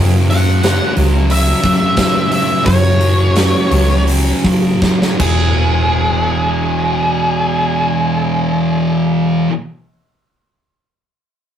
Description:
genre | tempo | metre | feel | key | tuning
rock, shoegaze and dream pop | 77-91 BPM | 4/4 | straight | E major | A4 = 440 Hz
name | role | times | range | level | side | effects
thick fuzz guitar | riff | 0.0-9.5 s | E2 to F#3 | -16 LUFS | equal | distortion
vintage muted fingered electric bass | bass | 0.0-9.4 s | E1 to F#3 | -15 LUFS | equal | none
octave-fuzz lead guitar | melody | 0.3-9.4 s | G#4 to F#5 | -18 LUFS | equal | distortion
huge arena drum kit | drums | 0.3-5.4 s | crash cymbal, hi-hat, kick drum, snare drum | -18 LUFS | equal | none
room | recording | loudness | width
moderate studio reverb, RT60 0.5 s | rough rehearsal-room recording, tube saturation | -12 LUFS | side -9 dB against mid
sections
0.0-5.6 A section; 5.6-8.7 B section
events
slowing down 0.0-5.6; drum fill 4.8-5.6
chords
0.0 F#5; 5.2 E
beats
0.64 1.30 1.98 | 2.66 3.36 4.08 4.82 | 5.58 6.36 7.13 7.91

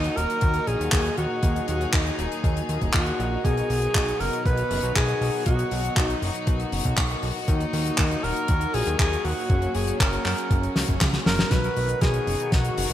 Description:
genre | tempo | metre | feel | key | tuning
italo disco | 119 BPM | 4/4 | straight | unclear | A4 = 438 Hz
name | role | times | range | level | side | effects
breathy alto saxophone | melody | 0.0-12.9 s | D#4 to B4 | -28 LUFS | equal | digital delay
rich studio string section | sustained chords | 0.0-12.9 s | A#2 to G#4 | -32 LUFS | left 2 dB | low-pass filter
mellow synth brass | stabs | 0.0-12.9 s | A#3 to D#5 | -34 LUFS | right 1 dB | chorus
fat analog bass | bass | 0.0-12.9 s | D#1 to F#2 | -28 LUFS | equal | none
damped 70s drum kit | drums | 0.0-12.9 s | handclaps, hi-hat, snare drum | -28 LUFS | left 1 dB | gated reverb
electronic kick drum | drums | 0.4-12.6 s | none | -24 LUFS | equal | none
room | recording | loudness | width
moderate lush hall reverb, RT60 1.8 s, small room ambience | bright 1980s-style digital production | -21 LUFS | side -12 dB against mid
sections
0.0-11.5 A section; 11.5-12.9 B section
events
drum fill 10.8-11.5, 11.5-12.9; band accent 11.4; filter sweep on string section 11.5-12.9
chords
0.0 D#m; 3.4 B; 7.5 D#m; 9.5 F#; 11.5 B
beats
0.42 0.93 | 1.43 1.93 2.44 2.94 | 3.45 3.95 4.46 4.96 | 5.46 5.97 6.47 6.98 | 7.48 7.98 8.49 8.99 | 9.50 10.00 10.51 11.01 | 11.51 12.02 12.52

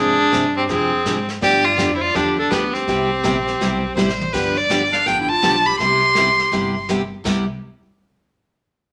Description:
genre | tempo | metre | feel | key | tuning
country, western swing | 164 BPM | 4/4 | swing 64% on 8ths | C major | A4 = 440 Hz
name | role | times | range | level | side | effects
clear fiddle | melody | 0.0-6.8 s | B3 to C6 | -20 LUFS | equal | none
mellow clarinet | second line | 0.0-6.8 s | G3 to D5 | -27 LUFS | equal | none
picked steel-string acoustic guitar | accompaniment | 0.0-7.4 s | C3 to Ab4 | -24 LUFS | equal | none
upright bass | bass | 0.0-7.5 s | G1 to Ab2 | -34 LUFS | equal | none
jazz brush drum kit | drums | 0.3-7.5 s | brushed snare drum, crash cymbal, hi-hat, kick drum, snare drum, toms | -31 LUFS | equal | none
room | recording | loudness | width
wet studio reverb, RT60 0.8 s | none | -18 LUFS | mono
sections
0.0-4.3 A section; 4.3-7.3 B section; 7.3-8.7 C section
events
drum fill 4.0-4.3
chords
0.0 Fm6; 1.4 G7; 2.9 Cmaj7; 4.3 G7; 5.8 Cmaj7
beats
0.32 0.68 1.05 | 1.41 1.78 2.14 2.51 | 2.87 3.24 3.60 3.97 | 4.33 4.70 5.06 5.43 | 5.79 6.16 6.52 6.89 | 7.25

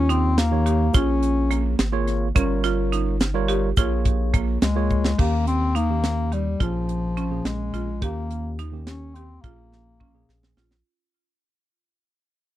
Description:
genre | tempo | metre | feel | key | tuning
progressive instrumental, band music in an uneven meter | 212 BPM (eighths) | 5/8 | straight | Bb dorian | A4 = 438 Hz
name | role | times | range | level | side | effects
warm bass clarinet | melody | 0.0-1.8, 4.6-10.6 s | F3 to Db4 | -25 LUFS | left 4 dB | none
mellow tine electric piano | accompaniment | 0.0-10.7 s | Bb2 to Db5 | -29 LUFS | right 2 dB | medium stereo tremolo
round analog bass | bass | 0.0-10.8 s | G1 to Eb2 | -25 LUFS | equal | none
buzzing marimba with hard mallets | arpeggios | 0.1-10.7 s | Bb3 to G4 | -29 LUFS | right 10 dB | tape echo
tight funk drum kit | drums | 0.1-10.8 s | crash cymbal, hi-hat, kick drum, snare drum | -22 LUFS | equal | none
egg shaker | percussion | 0.4-5.0 s | none | -42 LUFS | left 17 dB | none
room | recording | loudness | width
little or no reverb | dry, close 1970s-style studio recording | -20 LUFS | side -14 dB against mid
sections
0.0-5.2 A section; 5.2-10.8 B section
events
drum fill 4.9, 9.7-10.8; fade-out 5.2-10.8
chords
0.0 Eb7; 0.9 Bbm7; 2.4 Gm7b5; 3.8 Bbm7; 5.2 Eb7; 6.6 Bbm7; 8.0 Eb7; 9.4 Bbm7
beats
0.10 0.38 0.66 | 0.94 1.23 1.51 1.79 2.08 | 2.36 2.64 2.92 3.21 3.49 | 3.77 4.05 4.34 4.62 4.90 | 5.18 5.47 5.75 6.03 6.32 | 6.60 6.88 7.17 7.45 7.73 | 8.02 8.30 8.58 8.87 9.15 | 9.43 9.71 10.00 10.28 10.57

